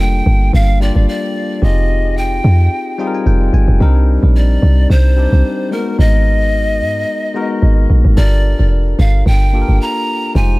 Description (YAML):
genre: amapiano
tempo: 110 BPM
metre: 4/4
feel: swing 55% on 16ths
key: G phrygian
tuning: A4 = 438 Hz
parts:
  - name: breathy bright pan flute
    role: melody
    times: 0.0-10.6 s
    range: Bb4 to Bb5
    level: -20 LUFS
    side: equal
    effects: tape echo
  - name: bell-like tine electric piano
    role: accompaniment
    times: 0.0-10.6 s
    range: G3 to Ab5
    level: -20 LUFS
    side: left 3 dB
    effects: tape echo
  - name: deep log drum bass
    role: bass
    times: 0.0-10.6 s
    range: F1 to Ab2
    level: -11 LUFS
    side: equal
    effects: none
room: small room reverb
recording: echo-heavy mix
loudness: -11 LUFS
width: side -21 dB against mid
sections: 0.0-10.6 A section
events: tine electric piano fill 2.7-3.8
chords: 0.0 Gm9; 1.6 Fm9; 3.8 Cm9; 5.7 Abm9; 8.2 Gm9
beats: 0.53 1.08 | 1.62 2.17 2.71 3.26 | 3.81 4.35 4.90 5.44 | 5.99 6.53 7.08 7.62 | 8.17 8.71 9.26 9.81 | 10.35